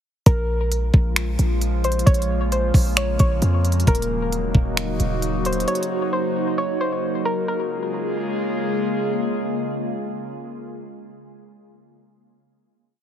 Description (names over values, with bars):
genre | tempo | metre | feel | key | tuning
hip hop, atmospheric cloud-rap | 133 BPM | 4/4 | half-time | Bb minor | A4 = 439 Hz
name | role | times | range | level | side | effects
soft round pluck | melody | 0.3-8.8 s | Bb4 to Db5 | -26 LUFS | left 1 dB | chorus, low-pass filter, ping-pong delay
warbly tape-like pad | sustained chords | 0.7-11.1 s | Db3 to Ab4 | -25 LUFS | equal | chorus, built-in reverb, phaser, sidechain pumping
warm 808-style bass | bass | 0.3-5.6 s | Eb1 to F2 | -21 LUFS | equal | none
trap drum kit | drums | 0.3-5.9 s | finger snaps, hi-hat, kick drum | -18 LUFS | equal | none
room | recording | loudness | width
light reverb | heavily compressed radio sound, multiband compression | -19 LUFS | side -9 dB against mid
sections
0.3-7.5 verse; 7.5-11.1 final chord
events
none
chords
0.3 Bbm7; 3.9 Ebm7; 7.5 Bbm7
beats
| 0.26 0.71 1.17 1.62 | 2.07 2.52 2.97 3.42 | 3.87 4.32 4.77 5.22 | 5.68 6.13 6.58 7.03 | 7.48 7.93 8.38 8.83 | 9.29 9.74 10.19 10.64